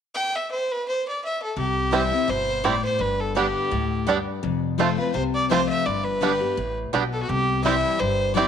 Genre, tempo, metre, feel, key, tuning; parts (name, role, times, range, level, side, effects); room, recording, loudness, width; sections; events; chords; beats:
bluegrass; 168 BPM; 4/4; swing 55% on 8ths; C major; A4 = 437 Hz
clear fiddle; melody; 0.1-8.5 s; F#4 to G5; -25 LUFS; right 1 dB
picked steel-string acoustic guitar; accompaniment; 1.6-8.5 s; F2 to G4; -26 LUFS; left 8 dB
upright bass; bass; 1.6-8.5 s; F1 to D2; -30 LUFS; right 2 dB
bluegrass banjo; melody; 1.9-8.5 s; G3 to F4; -26 LUFS; right 5 dB
mandolin; stabs; 1.9-8.5 s; B3 to A5; -30 LUFS; right 12 dB
light reverb; 1960s-style stereo with parts hard left and right; -21 LUFS; side -8 dB against mid
0.1-1.6 A section; 1.6-8.5 B section
0.1 N.C.; 1.6 C; 3.0 G; 4.4 F; 5.9 G; 7.3 C
| 0.14 0.50 0.86 1.22 | 1.57 1.93 2.29 2.65 | 3.00 3.36 3.72 4.08 | 4.43 4.79 5.15 5.51 | 5.86 6.22 6.58 6.93 | 7.29 7.65 8.01 8.36